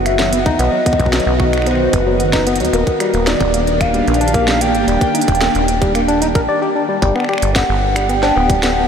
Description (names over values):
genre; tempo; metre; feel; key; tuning
IDM; 112 BPM; 4/4; straight; unclear; A4 = 440 Hz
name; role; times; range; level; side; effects
warbly nostalgic lead; melody; 0.0-8.9 s; Bb4 to G5; -19 LUFS; equal; chorus, phaser, ping-pong delay
granular cloud pad; sustained chords; 0.0-8.9 s; D#3 to G4; -19 LUFS; equal; built-in reverb, vintage 12-bit sampler grit
deep acid bass; bass; 0.0-8.9 s; D1 to D#2; -19 LUFS; equal; tube saturation
organic electronic drum kit; drums; 0.1-8.7 s; cowbell, finger snaps, hi-hat, snare drum; -22 LUFS; right 1 dB; ping-pong delay
barky tine electric piano; arpeggios; 0.2-8.7 s; F#3 to D5; -20 LUFS; left 2 dB; overdrive, ping-pong delay
electronic kick drum; drums; 0.5-8.6 s; none; -19 LUFS; equal; none
room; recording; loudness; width
wet huge ambient reverb, RT60 7.1 s; dreamy mix soaked in reverb; -12 LUFS; side -7 dB against mid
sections
0.0-7.0 A section; 7.0-8.9 B section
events
break 6.5-7.0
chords
0.0 B; 2.7 Ebmaj7; 7.0 G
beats
0.06 | 0.59 1.13 1.67 2.20 | 2.74 3.27 3.81 4.34 | 4.88 5.42 5.95 6.49 | 7.02 7.56 8.09 8.63